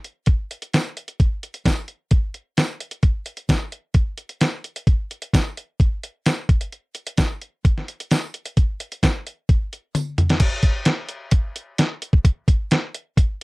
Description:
rock; 130 BPM; 4/4; straight
detuned 8-bit digital drum machine; drums; 0.0-13.3 s; crash cymbal, hi-hat, kick drum, snare drum, toms; -18 LUFS; equal
tambourine; percussion; 0.7-10.1 s; -37 LUFS; right 6 dB
little or no reverb; dry, close 1970s-style studio recording; -20 LUFS; side -25 dB against mid
0.0-10.4 A section; 10.4-13.4 B section
drum fill 9.9-10.4
0.27 0.73 | 1.20 1.66 2.12 2.58 | 3.04 3.50 3.96 4.42 | 4.88 5.34 5.80 6.26 | 6.72 7.18 7.64 8.10 | 8.56 9.03 9.49 9.95 | 10.41 10.87 11.33 11.79 | 12.25 12.71 13.18

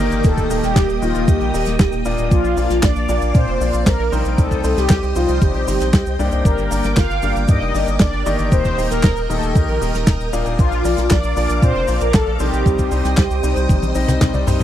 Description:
italo disco; 116 BPM; 4/4; straight; A4 = 440 Hz
mellow synth brass; melody; 0.0-14.2 s; F4 to F5; -22 LUFS; equal; chorus, tape echo
string machine, full ensemble; sustained chords; 0.0-14.6 s; Bb3 to Eb6; -26 LUFS; equal; ensemble chorus
warm concert grand piano; stabs; 0.0-14.6 s; G2 to Eb5; -24 LUFS; left 4 dB
round analog bass; bass; 0.0-14.6 s; Eb1 to Bb2; -21 LUFS; equal
natural country drum kit; drums; 0.0-14.6 s; cabasa, handclaps, hi-hat, snare drum, toms; -22 LUFS; right 1 dB
electronic kick drum; drums; 0.2-14.3 s; -15 LUFS; equal; overdrive
little or no reverb; dry, close 1970s-style studio recording; -15 LUFS; side -11 dB against mid
0.0-14.6 A section
drum fill 13.7-14.6
0.2 Eb; 2.3 Bb; 4.4 Cm; 6.5 Gm; 8.5 Eb; 10.6 Bb; 12.7 Cm
| 0.24 0.76 1.28 1.80 | 2.31 2.83 3.35 3.87 | 4.38 4.90 5.42 5.93 | 6.45 6.97 7.49 8.00 | 8.52 9.04 9.55 10.07 | 10.59 11.11 11.62 12.14 | 12.66 13.18 13.69 14.21

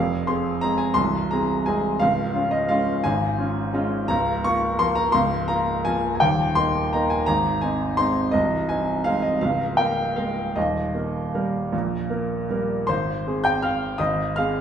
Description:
classical, piano waltz; 150-181 BPM; 3/4; rubato; Ab major from 4.1 s; A4 = 440 Hz
clear baby grand piano; solo; 0.0-14.6 s; C1 to G6; -20 LUFS; equal
wet large studio reverb, RT60 1.2 s; heard from further back in the room; -20 LUFS; side -8 dB against mid
0.0-12.9 A section; 12.9-14.6 B section
0.0 Fm; 2.0 Db; 4.1 Bbm/Db; 6.2 Eb; 7.3 Ab; 8.4 Ab/C; 9.4 Bbm7/Db; 10.6 Eb; 12.9 Ab
0.28 0.64 | 0.99 1.32 1.68 | 2.02 2.36 2.71 | 3.05 3.39 3.75 | 4.10 4.44 4.80 | 5.15 5.49 5.86 | 6.21 6.56 6.92 | 7.28 7.63 7.99 | 8.35 8.71 9.07 | 9.43 9.79 10.17 | 10.56 10.95 11.35 | 11.73 12.10 12.50 | 12.88 13.25 13.63 | 13.99 14.35

